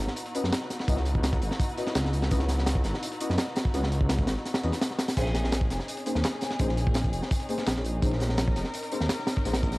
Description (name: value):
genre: drum and bass, jungle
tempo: 168 BPM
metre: 4/4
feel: straight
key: Bb minor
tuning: A4 = 436 Hz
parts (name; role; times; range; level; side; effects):
- dark studio string section; sustained chords; 0.0-9.8 s; Cb4 to Bb4; -36 LUFS; left 1 dB; none
- detuned saw bass; bass; 0.0-9.8 s; F1 to Gb2; -28 LUFS; equal; none
- crunchy breakbeat drum kit; drums; 0.1-9.8 s; crash cymbal, hi-hat, kick drum, snare drum; -28 LUFS; equal; none
- dusty soul sampler-style drum kit; drums; 0.2-9.7 s; hi-hat, snare drum; -42 LUFS; equal; high-pass filter on hats, high-pass filter on snare
- deep mellow chord stab; stabs; 0.3-9.5 s; Bb3 to Eb5; -35 LUFS; left 2 dB; chorus, dub echo
room: little or no reverb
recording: dry, gritty hardware recording, cassette tape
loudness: -25 LUFS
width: side -21 dB against mid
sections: 0.0-5.2 A section; 5.2-9.8 A section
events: drop 0.0-5.2, 5.2-9.8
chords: 0.0 Dbm11; 5.2 Bbm11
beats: 0.17 0.53 | 0.88 1.24 1.60 1.96 | 2.31 2.67 3.03 3.38 | 3.74 4.10 4.46 4.81 | 5.17 5.53 5.88 6.24 | 6.60 6.96 7.31 7.67 | 8.03 8.38 8.74 9.10 | 9.46